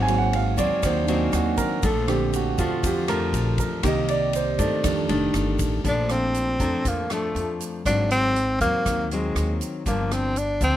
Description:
bossa nova; 120 BPM; 4/4; straight; Bb major; A4 = 440 Hz
nylon-string guitar; accompaniment; 0.0-10.8 s; F2 to G4; -27 LUFS; left 4 dB
warm concert grand piano; accompaniment; 0.0-8.0 s; D3 to Bb5; -24 LUFS; right 4 dB
upright bass; bass; 0.0-10.7 s; F1 to G2; -27 LUFS; equal
swinging big-band drum kit; drums; 0.1-10.7 s; hi-hat, kick drum, ride cymbal, rim click; -31 LUFS; equal
egg shaker; percussion; 0.1-10.8 s; -40 LUFS; right 10 dB
breathy tenor saxophone; melody; 5.9-10.8 s; Ab3 to D4; -24 LUFS; equal
little or no reverb; close, detailed microphones; -21 LUFS; side -12 dB against mid
0.0-5.8 A section; 5.8-10.8 B section
grand piano solo 0.0-5.8
0.0 Ab9; 1.8 Bbmaj7; 3.8 Cm7; 4.8 F13; 5.8 Bbmaj7; 7.9 Ab9; 9.9 Gm7

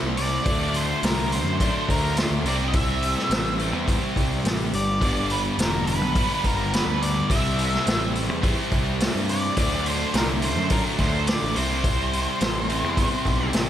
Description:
blues rock power trio and southern rock; 105 BPM; 4/4; straight; A4 = 440 Hz
overdriven electric guitar; riff; 0.0-13.7 s; G2 to E4; -26 LUFS; equal
fuzz picked electric bass; bass; 0.0-13.7 s; E1 to G2; -27 LUFS; equal; overdrive
octave-fuzz lead guitar; melody; 0.2-13.5 s; Bb4 to E5; -28 LUFS; equal; distortion, slapback echo
vintage drum kit; drums; 0.2-13.7 s; hi-hat, kick drum, snare drum; -26 LUFS; equal
moderate concert hall reverb, RT60 2.1 s; big arena sound; -20 LUFS; side -11 dB against mid
0.0-13.7 A section
0.5 D; 2.5 C; 5.0 G; 7.3 C; 9.6 D; 11.6 C

